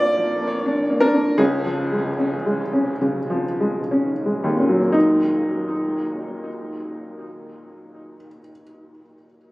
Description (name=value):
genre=neoclassical minimalist piano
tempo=58-86 BPM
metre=4/4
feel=rubato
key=Eb minor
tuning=A4 = 440 Hz
part: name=warm upright piano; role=solo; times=0.0-9.5 s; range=Bb1 to F5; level=-19 LUFS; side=equal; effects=tape echo
room=light reverb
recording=recorded on a phone in the room, club reverb, compression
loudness=-18 LUFS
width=side -20 dB against mid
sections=0.0-4.9 A section; 4.9-9.0 B section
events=slowing down 0.0-4.9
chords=0.0 Bb; 1.4 Db; 4.9 Ebm